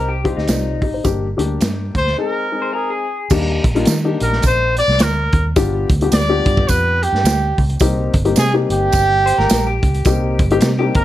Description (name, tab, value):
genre	uptempo 1960s-style soul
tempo	107 BPM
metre	4/4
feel	swing 59% on 8ths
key	Eb major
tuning	A4 = 438 Hz
part	dark upright piano	accompaniment	0.0-11.0 s	G3 to Eb5	-20 LUFS	left 4 dB	none
part	electric guitar through a small old amp	riff	0.0-3.3, 9.3-11.0 s	Eb4 to C5	-23 LUFS	left 4 dB	none
part	vintage muted fingered electric bass	bass	0.0-11.0 s	G1 to Eb3	-19 LUFS	equal	none
part	crunchy breakbeat drum kit	drums	0.3-11.0 s	crash cymbal, hi-hat, kick drum, snare drum	-18 LUFS	right 1 dB	none
part	tambourine	percussion	0.5-10.8 s	none	-28 LUFS	right 13 dB	none
part	clear trumpet	melody	2.0-11.0 s	G4 to D5	-18 LUFS	right 2 dB	none
room	studio reverb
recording	none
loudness	-14 LUFS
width	side -13 dB against mid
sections	0.0-3.3 A section; 3.3-11.0 B section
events	break 2.2-3.3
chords	0.0 Cm; 1.1 Gm; 2.2 Ab; 3.3 Ebmaj7; 5.6 G7; 7.8 Cm7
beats	0.49 | 1.05 1.62 2.18 2.74 | 3.31 3.87 4.43 5.00 | 5.56 6.12 6.68 7.25 | 7.81 8.37 8.93 9.50 | 10.06 10.62